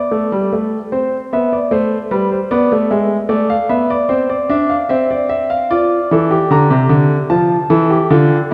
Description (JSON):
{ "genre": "classical, baroque-style 3-part fugue for grand piano", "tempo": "75 BPM", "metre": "4/4", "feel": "straight", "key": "D minor", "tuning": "A4 = 438 Hz", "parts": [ { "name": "warm grand piano", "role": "solo", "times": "0.0-8.5 s", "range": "C3 to Bb5", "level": "-15 LUFS", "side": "equal", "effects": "none" } ], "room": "wet scoring stage reverb, RT60 1.9 s", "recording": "heard from further back in the room", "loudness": "-15 LUFS", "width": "mono", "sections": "0.0-8.5 A section", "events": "none", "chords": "0.0 Am; 2.5 E7; 4.1 Cadd9; 5.7 Dm; 7.3 F" }